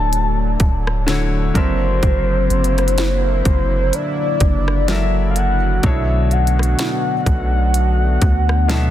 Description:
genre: contemporary R&B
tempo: 63 BPM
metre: 4/4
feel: swing 58% on 16ths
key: F# minor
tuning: A4 = 439 Hz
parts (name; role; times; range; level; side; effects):
- soft octave-layered synth lead; melody; 0.0-8.9 s; B#4 to A5; -21 LUFS; left 2 dB; chorus, phaser, ping-pong delay
- warm grand piano; accompaniment; 0.0-8.9 s; B2 to E5; -24 LUFS; left 2 dB; none
- chorused pulse-width pad; sustained chords; 0.0-8.9 s; D3 to E4; -25 LUFS; equal; none
- long sustained 808-style bass; bass; 0.0-8.9 s; D1 to D2; -18 LUFS; equal; none
- trap drum kit; drums; 0.1-8.9 s; hi-hat, kick drum, rim click, snare drum; -19 LUFS; equal; none
room: digital ambience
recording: dense, heavily limited modern master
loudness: -14 LUFS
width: side -12 dB against mid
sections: 0.0-8.9 A section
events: none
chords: 0.0 Dmaj7; 1.6 F#7alt; 5.8 Bm9

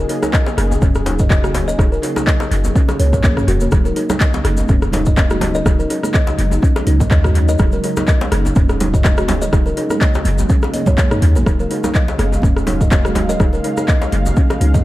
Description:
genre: afro house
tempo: 124 BPM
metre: 4/4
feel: swing 55% on 16ths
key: Eb minor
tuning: A4 = 440 Hz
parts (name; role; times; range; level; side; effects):
- warm analog pad; sustained chords; 0.0-14.8 s; Db3 to F5; -24 LUFS; right 1 dB; chorus, sidechain pumping
- kalimba; arpeggios; 0.0-14.8 s; Bb3 to Eb5; -22 LUFS; left 1 dB; sidechain pumping, tape echo
- warm 808-style bass; bass; 0.0-14.8 s; Eb1 to Eb2; -18 LUFS; equal; tube saturation, sidechain pumping
- deep house drum kit; drums; 0.1-14.8 s; handclaps, hi-hat, rim click, toms; -22 LUFS; equal; overdrive, dub echo
- djembe; percussion; 0.2-14.8 s; none; -26 LUFS; left 1 dB; dub echo
- maracas; percussion; 0.2-14.8 s; none; -36 LUFS; left 3 dB; dub echo
- electronic kick drum; drums; 0.3-14.8 s; none; -14 LUFS; equal; overdrive
- congas; percussion; 3.7-14.8 s; none; -26 LUFS; right 3 dB; dub echo
room: little or no reverb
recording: echo-heavy mix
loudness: -13 LUFS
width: side -16 dB against mid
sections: 0.0-14.8 A section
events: none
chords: 0.0 Ebm7

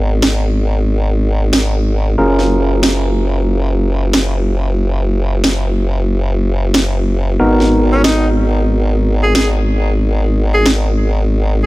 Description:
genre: glitch hop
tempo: 92 BPM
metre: 4/4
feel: swing 63% on 16ths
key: G# dorian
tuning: A4 = 440 Hz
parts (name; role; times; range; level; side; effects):
- bell-like tine electric piano; stabs; 0.0-11.7 s; B3 to A#4; -20 LUFS; right 1 dB; low-pass filter, tape echo
- formant-sweep wobble bass; bass; 0.0-11.7 s; F#1 to G#1; -14 LUFS; equal; chorus, tube saturation
- electronic snare drum; drums; 0.2-10.8 s; none; -17 LUFS; right 1 dB; overdrive
- clear tenor saxophone; melody; 7.9-11.7 s; C#4 to G#4; -19 LUFS; equal; tape echo
room: little or no reverb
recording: none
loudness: -12 LUFS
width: side -19 dB against mid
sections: 0.0-11.7 A section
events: none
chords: 0.0 G#m9; 2.2 F#maj7; 7.4 G#m9

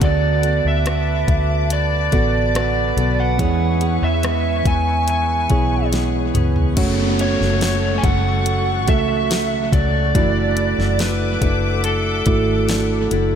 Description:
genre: pop ballad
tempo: 71 BPM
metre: 4/4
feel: straight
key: F# minor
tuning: A4 = 440 Hz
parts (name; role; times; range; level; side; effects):
- lead guitar through a small cranked amp; melody; 0.0-13.1 s; A4 to G#5; -22 LUFS; right 2 dB; overdrive, analog delay
- mellow tine electric piano; accompaniment; 0.0-13.4 s; C#3 to D5; -23 LUFS; right 6 dB; analog delay
- dark studio string section; sustained chords; 0.0-13.4 s; A4 to D6; -27 LUFS; left 4 dB; none
- fingerpicked steel-string acoustic guitar; arpeggios; 0.0-13.4 s; F#2 to A4; -28 LUFS; left 8 dB; analog delay
- vintage muted fingered electric bass; bass; 0.0-13.4 s; F#1 to E2; -20 LUFS; left 1 dB; none
- smooth R&B drum kit; drums; 0.0-13.3 s; crash cymbal, hi-hat, kick drum, rim click, snare drum, toms; -21 LUFS; left 1 dB; none
- downlifter; sound effects; 6.8-13.4 s; none; -29 LUFS; left 1 dB; none
room: light reverb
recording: echo-heavy mix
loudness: -16 LUFS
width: side -8 dB against mid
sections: 0.0-6.8 A section; 6.8-13.4 B section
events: drum fill 5.9-6.8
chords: 0.0 D6; 3.4 E6; 6.8 F#m; 10.2 Dadd9/F#

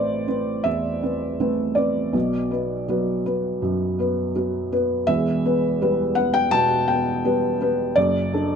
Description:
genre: neoclassical minimalist piano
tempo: 83 BPM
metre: 4/4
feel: rubato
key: E minor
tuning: A4 = 440 Hz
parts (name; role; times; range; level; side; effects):
- felt-muted upright piano; solo; 0.0-8.6 s; E1 to A5; -20 LUFS; equal; none
room: light reverb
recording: none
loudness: -20 LUFS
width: side -7 dB against mid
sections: 0.0-8.6 A section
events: none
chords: 0.0 Amadd9; 2.1 Bm; 5.1 Em; 8.0 D/F#

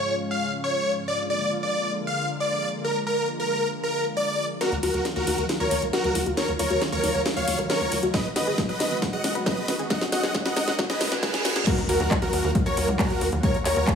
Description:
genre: uplifting trance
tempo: 136 BPM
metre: 4/4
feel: straight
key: Eb minor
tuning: A4 = 439 Hz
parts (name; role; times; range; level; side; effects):
- big supersaw lead; melody; 0.0-13.9 s; Gb4 to Gb5; -25 LUFS; equal; sidechain pumping, tape echo
- lush unison pad; sustained chords; 0.0-14.0 s; Ab2 to Gb4; -32 LUFS; left 1 dB; chorus, sidechain pumping
- tight sequenced synth; arpeggios; 4.6-11.6 s; Eb4 to Cb5; -32 LUFS; left 3 dB; chorus, sidechain pumping, tape echo
- techno drum kit; drums; 4.6-14.0 s; crash cymbal, handclaps, hi-hat, snare drum; -28 LUFS; equal; studio reverb
- riser, reverse cymbal and impact; sound effects; 8.5-13.4 s; none; -35 LUFS; right 2 dB; none
- tight sequencer bass; bass; 4.7-13.8 s; Gb1 to Ab2; -31 LUFS; equal; sidechain pumping
- electronic kick drum; drums; 8.1-14.0 s; none; -26 LUFS; equal; studio reverb
- analog pluck; second line; 11.7-13.9 s; Bb4 to Db5; -31 LUFS; left 2 dB; chorus, sidechain pumping, tape echo
room: moderate lush hall reverb, RT60 2.1 s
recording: high-pass filter, small room ambience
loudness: -22 LUFS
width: side -7 dB against mid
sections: 0.0-4.6 A section; 4.6-11.7 B section; 11.7-14.0 C section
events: build-up 4.6-11.7; drum fill 4.6-11.7; filter sweep on synth arpeggio sound 4.6-11.7; filter sweep 4.6-11.7; reverse cymbal 10.9-11.7; drop 11.7-14.0; impact 11.7-13.4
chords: 0.0 Db/Ab; 1.1 Bb7; 4.6 Ebmadd9; 8.1 Abm7; 11.7 Ebmadd9

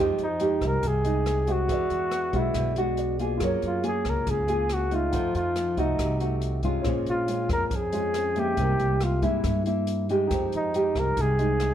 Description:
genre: bossa nova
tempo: 139 BPM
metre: 4/4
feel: straight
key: F minor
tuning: A4 = 441 Hz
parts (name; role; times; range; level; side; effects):
- nylon-string guitar; accompaniment; 0.0-11.7 s; F2 to G#4; -28 LUFS; equal; none
- warm baby grand piano; accompaniment; 0.0-11.7 s; Db4 to G5; -36 LUFS; right 4 dB; none
- upright bass; bass; 0.0-11.7 s; Bb1 to G2; -29 LUFS; equal; none
- mellow flugelhorn; melody; 0.2-11.7 s; Eb4 to Bb4; -27 LUFS; equal; none
- open jazz drum kit; drums; 0.2-11.7 s; hi-hat, kick drum, rim click; -34 LUFS; equal; none
room: light reverb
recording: none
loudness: -23 LUFS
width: side -10 dB against mid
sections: 0.0-11.7 A section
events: grand piano fill 2.8-3.4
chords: 0.0 Fm9; 1.7 E9; 3.4 Gbmaj9; 5.1 F7b9; 6.9 Bbm7; 8.6 C7b13; 10.3 Fm9

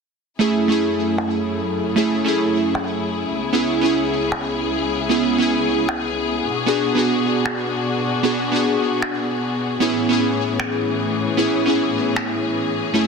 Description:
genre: future bass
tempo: 153 BPM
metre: 4/4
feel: half-time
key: F# minor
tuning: A4 = 439 Hz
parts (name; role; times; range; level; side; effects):
- glassy digital keys; accompaniment; 0.4-13.1 s; A3 to G#4; -19 LUFS; right 2 dB; chorus, digital delay
- dark studio string section; sustained chords; 0.4-13.1 s; C#2 to G#4; -24 LUFS; left 5 dB; none
- electronic finger snaps; drums; 1.2-12.2 s; none; -30 LUFS; equal; soft clipping on snare, low-pass filter on snare, studio ambience
room: light reverb, small room reverb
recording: dense, heavily limited modern master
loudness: -18 LUFS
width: side -5 dB against mid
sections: 0.4-13.1 A section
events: filter sweep on drum 0.4-13.1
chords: 0.4 F#m9; 3.3 C#m7; 6.5 Bm6; 9.8 Amaj7

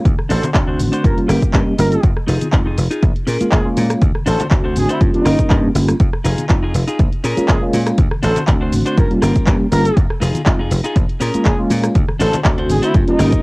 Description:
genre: filtered disco house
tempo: 121 BPM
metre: 4/4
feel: swing 54% on 16ths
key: unclear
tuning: A4 = 440 Hz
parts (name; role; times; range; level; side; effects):
- mellow reed electric piano; accompaniment; 0.0-13.4 s; G3 to Bb4; -18 LUFS; equal; medium tremolo, phaser, vintage 12-bit sampler grit, sidechain pumping, low-pass filter, cassette tape
- congas and tambourine; percussion; 0.0-13.4 s; none; -27 LUFS; left 2 dB; none
- dry thumbed slap bass; bass; 0.1-13.4 s; F1 to Bb2; -19 LUFS; equal; sidechain pumping, low-pass filter
- electronic kick drum; drums; 0.1-13.4 s; none; -15 LUFS; equal; cassette tape
- punchy analog drum machine; drums; 0.1-13.4 s; handclaps, hi-hat, rim click, shaker; -24 LUFS; equal; cassette tape, sidechain pumping on hats, sidechain pumping on perc
- brilliant horn section; melody; 0.3-13.4 s; Eb4 to Bb4; -21 LUFS; equal; sidechain pumping, low-pass filter, cassette tape
- clean electric guitar; riff; 0.3-13.4 s; Db4 to G5; -24 LUFS; left 1 dB; spring reverb, sidechain pumping, low-pass filter, cassette tape
room: light reverb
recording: home recording on cassette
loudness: -13 LUFS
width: side -24 dB against mid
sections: 0.0-13.4 A section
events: clean electric guitar fill 1.0-2.0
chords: 0.1 D7; 1.0 Gm7b5; 2.0 Fm7; 3.0 Bbm7; 4.0 D7; 5.0 Gm7b5; 6.0 Fm7; 7.0 Bbm7; 8.0 D7; 9.0 Gm7b5; 10.0 Fm7; 11.0 Bbm7; 12.0 D7

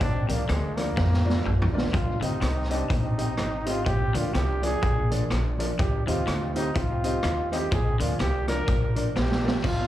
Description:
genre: ska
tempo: 125 BPM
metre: 4/4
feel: swing 58% on 8ths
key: unclear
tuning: A4 = 440 Hz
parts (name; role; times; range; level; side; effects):
- clear trombone; melody; 0.0-9.9 s; Ab3 to Bb4; -31 LUFS; right 1 dB; analog delay, plate reverb, slapback echo
- clean electric guitar; riff; 0.0-9.8 s; Ab2 to F3; -34 LUFS; left 4 dB; slapback echo
- upright bass; bass; 0.0-9.9 s; Ab1 to F2; -27 LUFS; equal; none
- raw garage drum kit; drums; 0.0-9.8 s; hi-hat, kick drum, rim click, snare drum, splash cymbal, toms; -28 LUFS; equal; analog delay
- mellow electric guitar; accompaniment; 0.3-9.6 s; F3 to G4; -34 LUFS; equal; spring reverb, analog delay, plate reverb, slapback echo
- dark upright piano; stabs; 0.3-9.6 s; D4 to Eb5; -35 LUFS; left 1 dB; analog delay, plate reverb, slapback echo
- group handclap; percussion; 2.4-9.3 s; none; -47 LUFS; right 2 dB; none
room: light reverb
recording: live gig heard through the venue's PA, club reverb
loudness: -23 LUFS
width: side -13 dB against mid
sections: 0.0-9.9 A section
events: trombone solo 0.0-9.9; drum fill 1.0-1.9, 9.2-9.6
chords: 0.0 Bb; 1.9 Cm; 3.9 Bb; 5.8 Cm; 7.7 Bb

